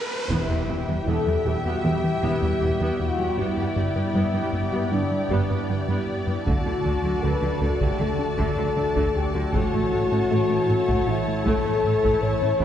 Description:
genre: cinematic, hybrid orchestral and electronic film score.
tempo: 78 BPM.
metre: 4/4.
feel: straight.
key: E dorian.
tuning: A4 = 435 Hz.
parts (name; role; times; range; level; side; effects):
riser and impact; sound effects; 0.0-3.4 s; none; -31 LUFS; equal; none.
clear symphonic violin section; second line; 0.3-12.6 s; B4 to A5; -33 LUFS; left 2 dB; none.
rich symphonic viola section; accompaniment; 0.3-12.6 s; A3 to G4; -33 LUFS; right 2 dB; none.
mellow French horn section; sustained chords; 0.3-12.6 s; D4 to C#5; -26 LUFS; left 4 dB; none.
phased analog pad; sustained chords; 0.3-12.6 s; D3 to E5; -30 LUFS; equal; phaser, chorus.
tight sequenced synth; arpeggios; 0.3-12.6 s; D3 to A4; -34 LUFS; right 1 dB; none.
plucky analog bass; riff; 0.3-12.6 s; D2 to A3; -28 LUFS; equal; none.
rich studio cello section; bass; 0.3-12.6 s; E2 to D3; -31 LUFS; right 3 dB; none.
warm chamber double bass section; bass; 0.3-12.6 s; E1 to D2; -32 LUFS; right 3 dB; none.
taiko ensemble; drums; 0.3-1.8, 6.5-12.6 s; none; -30 LUFS; right 1 dB; none.
room: wet concert hall reverb, RT60 2.1 s.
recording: heard from further back in the room, nothing above 10.3 kHz.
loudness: -21 LUFS.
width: side -10 dB against mid.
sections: 0.3-12.6 A section.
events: break 0.0-0.3; riser 0.0-0.3; impact 0.3-3.4.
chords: 0.3 Em; 3.4 G; 6.5 D; 9.5 A.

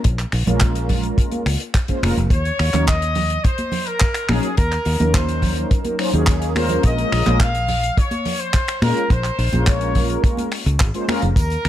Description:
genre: nu-disco, nu disco.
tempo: 106 BPM.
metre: 4/4.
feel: straight.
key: unclear.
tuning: A4 = 444 Hz.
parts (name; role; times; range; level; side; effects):
fingered electric bass; bass; 0.0-11.7 s; F1 to Bb2; -20 LUFS; equal; none.
damped 70s drum kit; drums; 0.0-11.7 s; finger snaps, handclaps, hi-hat; -26 LUFS; left 1 dB; none.
kick drum; drums; 0.1-11.5 s; none; -17 LUFS; equal; none.
mellow synth brass; accompaniment; 0.5-11.2 s; Gb3 to C5; -24 LUFS; equal; chorus, sidechain pumping, slapback echo.
congas and tambourine; percussion; 0.5-11.6 s; none; -26 LUFS; right 2 dB; none.
warm trumpet section; melody; 2.3-11.7 s; Ab4 to F5; -24 LUFS; left 2 dB; tape echo.
room: studio ambience.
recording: none.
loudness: -16 LUFS.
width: side -12 dB against mid.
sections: 0.0-11.7 A section.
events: none.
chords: 0.0 Bbm7; 2.3 Ebm7; 6.8 Bbm7.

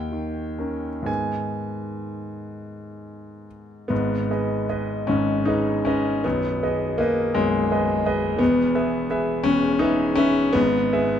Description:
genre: classical, romantic nocturne for solo piano.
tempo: 40-58 BPM (dotted quarters).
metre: 12/8.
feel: rubato.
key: G# minor.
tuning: A4 = 441 Hz.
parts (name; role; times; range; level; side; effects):
clear grand piano; solo; 0.0-11.2 s; B0 to G#5; -21 LUFS; left 1 dB; none.
room: light reverb.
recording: close, detailed microphones.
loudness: -20 LUFS.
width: side -9 dB against mid.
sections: 0.0-3.9 A section; 3.9-11.2 B section.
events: none.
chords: 0.0 D#7; 1.1 G#m; 6.2 G#m/B; 8.4 E; 10.6 E/G#.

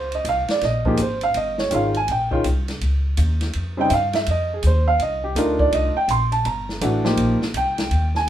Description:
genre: modal jazz.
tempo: 164 BPM.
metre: 4/4.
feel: swing 64% on 8ths.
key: unclear.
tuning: A4 = 440 Hz.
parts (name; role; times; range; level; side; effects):
clear upright piano; accompaniment; 0.0-8.3 s; Db3 to C6; -20 LUFS; right 1 dB; none.
upright bass; bass; 0.0-8.3 s; G1 to G2; -22 LUFS; equal; none.
vintage drum kit; drums; 0.1-8.2 s; hi-hat, kick drum, ride cymbal, snare drum; -29 LUFS; equal; none.
room: moderate studio reverb, RT60 0.6 s.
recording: minimal, uncompressed stereo recording.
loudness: -18 LUFS.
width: side -11 dB against mid.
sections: 0.0-8.3 A section.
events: none.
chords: 0.0 Bbm11; 5.0 Cm11.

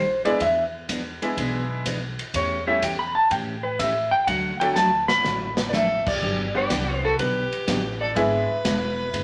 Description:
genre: country, western swing.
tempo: 124 BPM.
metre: 4/4.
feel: swing 69% on 8ths.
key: G major.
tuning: A4 = 444 Hz.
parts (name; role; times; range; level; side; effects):
clean lap steel guitar; melody; 0.0-9.2 s; A4 to B5; -25 LUFS; equal; none.
picked steel-string acoustic guitar; accompaniment; 0.0-9.2 s; D3 to G#4; -32 LUFS; equal; none.
upright bass; bass; 0.0-9.2 s; E1 to A2; -35 LUFS; equal; none.
tack piano; accompaniment; 0.2-8.5 s; F#3 to F#5; -29 LUFS; equal; none.
swinging big-band drum kit; drums; 0.3-9.2 s; crash cymbal, hi-hat, kick drum, ride cymbal, snare drum; -33 LUFS; equal; none.
clear fiddle; second line; 5.7-9.2 s; F#4 to B4; -32 LUFS; equal; none.
room: moderate club reverb, RT60 0.6 s.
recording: none.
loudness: -23 LUFS.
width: mono.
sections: 0.0-6.2 A section; 6.2-9.2 B section.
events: electric slide guitar solo 0.0-6.2; drum fill 4.8-5.7.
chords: 0.4 E7; 2.3 A7/E; 4.3 D; 6.2 Gmaj7; 8.2 E7.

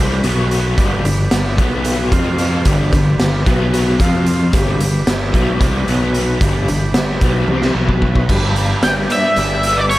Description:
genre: psychedelic rock.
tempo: 224 BPM (eighths).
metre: 7/8.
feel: straight.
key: G major.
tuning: A4 = 440 Hz.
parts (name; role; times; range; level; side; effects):
combo organ; sustained chords; 0.0-10.0 s; F3 to C5; -26 LUFS; right 4 dB; none.
overdriven semi-hollow guitar; riff; 0.0-10.0 s; G2 to F4; -18 LUFS; left 1 dB; rotary speaker, tape echo.
growling fingered electric bass; bass; 0.0-10.0 s; G1 to F2; -20 LUFS; equal; overdrive.
raw garage drum kit; drums; 0.2-10.0 s; crash cymbal, hi-hat, kick drum, snare drum, toms; -17 LUFS; equal; none.
octave-fuzz lead guitar; melody; 8.8-10.0 s; C#5 to G5; -15 LUFS; equal; wah, distortion, tape echo.
room: light reverb, small room ambience.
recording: echo-heavy mix.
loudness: -13 LUFS.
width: side -17 dB against mid.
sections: 0.0-8.3 A section; 8.3-10.0 B section.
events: drum fill 7.5-8.3.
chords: 0.2 B5; 0.8 G; 1.6 B5; 2.1 F5; 2.7 G; 3.5 B5; 4.0 F5; 4.5 G; 5.9 B5; 6.4 G; 7.8 B5; 8.3 G.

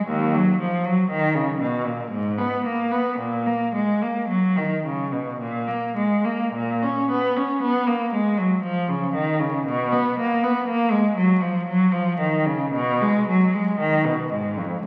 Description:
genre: classical, baroque-style suite movement for unaccompanied cello.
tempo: 52-61 BPM.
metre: 3/4.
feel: rubato.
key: Eb minor.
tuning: A4 = 441 Hz.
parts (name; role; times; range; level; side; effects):
rich cello; solo; 0.0-14.9 s; C#2 to C#4; -22 LUFS; equal; none.
room: wet recital hall reverb, RT60 1.5 s.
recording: very old 78 rpm record, vinyl crackle.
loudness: -22 LUFS.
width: mono.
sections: 0.0-14.9 A section.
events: none.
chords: none.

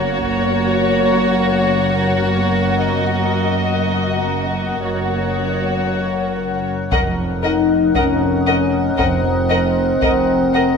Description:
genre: cinematic, suspense film score.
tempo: 58 BPM.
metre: 4/4.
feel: straight.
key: unclear.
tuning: A4 = 444 Hz.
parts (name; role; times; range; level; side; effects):
dark studio violin section; melody; 0.0-10.6 s; Db5 to Gb5; -24 LUFS; left 4 dB; none.
warm studio violin section; second line; 0.0-10.6 s; Gb4 to Eb5; -24 LUFS; left 1 dB; none.
dark studio viola section; accompaniment; 0.0-10.6 s; Bb3 to Bb4; -25 LUFS; right 4 dB; none.
evolving wavetable pad; sustained chords; 0.0-10.8 s; Bb4 to Gb5; -23 LUFS; equal; chorus, built-in reverb.
dark studio cello section; bass; 0.0-10.8 s; F2 to Gb2; -23 LUFS; left 1 dB; none.
warm studio double bass section; bass; 0.0-10.8 s; F1 to Gb1; -24 LUFS; right 3 dB; none.
solo taiko drums; drums; 0.2-0.7, 6.9-10.8 s; none; -26 LUFS; equal; none.
mellow French horn section; sustained chords; 7.4-10.8 s; C4 to Eb4; -16 LUFS; left 3 dB; none.
room: wet scoring stage reverb, RT60 1.6 s.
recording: none.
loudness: -15 LUFS.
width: side -6 dB against mid.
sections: 0.0-6.9 A section; 6.9-10.8 B section.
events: none.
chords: 0.0 Gb; 2.8 Ebm/Gb; 4.9 Gb; 6.9 Gb6/F.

